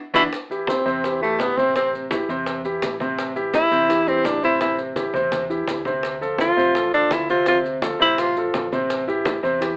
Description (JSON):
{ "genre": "Afro-Cuban jazz", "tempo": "168 BPM", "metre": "4/4", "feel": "straight", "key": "A minor", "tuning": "A4 = 442 Hz", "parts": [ { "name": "warm concert grand piano", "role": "accompaniment", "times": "0.1-9.8 s", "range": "C3 to C5", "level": "-23 LUFS", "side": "equal", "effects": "none" }, { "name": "hollow-body short-scale fingered electric bass", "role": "bass", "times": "0.1-9.8 s", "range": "A1 to E2", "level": "-39 LUFS", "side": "equal", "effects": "none" }, { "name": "bongos", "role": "percussion", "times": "0.1-9.8 s", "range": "none", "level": "-29 LUFS", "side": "equal", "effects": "none" }, { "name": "congas", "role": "percussion", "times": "0.1-9.8 s", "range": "none", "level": "-30 LUFS", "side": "equal", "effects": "none" }, { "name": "warm tenor saxophone", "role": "melody", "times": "0.2-8.4 s", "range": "A3 to F4", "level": "-18 LUFS", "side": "equal", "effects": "none" }, { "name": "maracas", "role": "percussion", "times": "0.2-9.8 s", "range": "none", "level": "-40 LUFS", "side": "right 1 dB", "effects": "none" } ], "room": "moderate studio reverb, RT60 0.6 s", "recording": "AM radio sound", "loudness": "-18 LUFS", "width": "side -33 dB against mid", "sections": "0.3-9.8 A section", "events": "drum fill 0.0-0.3, 5.0-6.0; band accent 0.0-0.3; tenor saxophone solo 0.3-9.8", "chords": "0.3 Am7; 6.0 Dm7; 8.9 Am7" }